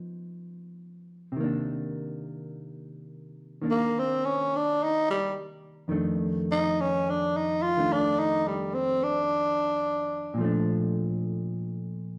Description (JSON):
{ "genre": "jazz ballad", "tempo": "53 BPM", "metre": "4/4", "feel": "swing 68% on 8ths", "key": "unclear", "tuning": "A4 = 440 Hz", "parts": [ { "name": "hollow-body jazz guitar", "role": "accompaniment", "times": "0.0-12.2 s", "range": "F2 to Eb4", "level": "-33 LUFS", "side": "equal", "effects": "none" }, { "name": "growling tenor saxophone", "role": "melody", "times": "3.7-10.7 s", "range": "G3 to F4", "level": "-28 LUFS", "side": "equal", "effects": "plate reverb" } ], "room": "wet large studio reverb, RT60 0.9 s", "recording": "heard from further back in the room", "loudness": "-28 LUFS", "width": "mono", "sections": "0.0-12.2 A section", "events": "tenor saxophone solo 0.0-12.2", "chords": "0.0 Db9; 1.3 Cm9; 5.9 F6; 10.4 Bbmaj7", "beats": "0.20 | 1.34 2.48 3.62 4.74 | 5.87 7.00 8.12 9.24 | 10.35 11.47" }